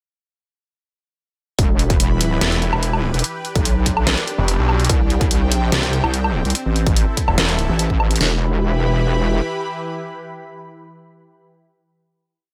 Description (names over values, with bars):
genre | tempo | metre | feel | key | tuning
heavy wobble dubstep | 145 BPM | 4/4 | half-time | E minor | A4 = 440 Hz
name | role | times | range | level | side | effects
lush unison pad | sustained chords | 1.6-11.5 s | C3 to B5 | -28 LUFS | equal | chorus, phaser, sidechain pumping
wobble bass | bass | 1.6-9.4 s | E1 to C2 | -21 LUFS | equal | chorus, overdrive
dubstep drum kit | drums | 1.6-8.3 s | hi-hat, kick drum, snare drum | -21 LUFS | equal | none
dubstep drum kit | drums | 1.6-8.2 s | hi-hat, snare drum, woodblock | -23 LUFS | equal | none
snarling distorted saw bass | bass | 2.4-7.7 s | E1 to C2 | -21 LUFS | equal | distortion, overdrive
room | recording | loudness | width
little or no reverb | none | -18 LUFS | mono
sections
1.6-8.2 drop; 8.2-11.5 final chord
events
drop 1.6-8.2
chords
1.6 Em; 3.2 G; 4.9 Csus2; 6.6 Am; 8.2 Em